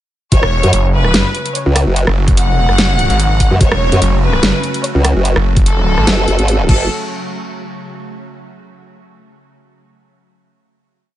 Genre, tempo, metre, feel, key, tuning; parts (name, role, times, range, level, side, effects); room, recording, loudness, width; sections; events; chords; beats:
heavy wobble dubstep; 146 BPM; 4/4; swing 53% on 16ths, half-time; F# minor; A4 = 437 Hz
rich studio violin section; melody; 0.3-6.8 s; A4 to F#5; -19 LUFS; left 1 dB; dub echo
evolving wavetable pad; sustained chords; 0.9-6.9 s; C#3 to F#4; -24 LUFS; right 1 dB; ensemble chorus, built-in reverb, vintage 12-bit sampler grit, sidechain pumping
formant-sweep wobble bass; bass; 0.3-6.9 s; F#1 to F#2; -13 LUFS; equal; chorus, overdrive
dubstep drum kit; drums; 0.3-6.8 s; crash cymbal, hi-hat, rim click, snare drum; -17 LUFS; equal
electronic kick drum; drums; 0.3-6.8 s; -12 LUFS; equal
snarling distorted saw bass; bass; 0.4-6.1 s; E1 to G#1; -14 LUFS; equal; distortion, overdrive
little or no reverb; nothing above 10.4 kHz; -11 LUFS; side -13 dB against mid
0.3-6.9 drop; 6.9-8.5 final hit
drop 0.3-6.9
0.3 F#m; 6.9 N.C.
| 0.32 0.73 1.14 1.55 | 1.96 2.37 2.78 3.19 | 3.61 4.02 4.43 4.84 | 5.25 5.66 6.07 6.48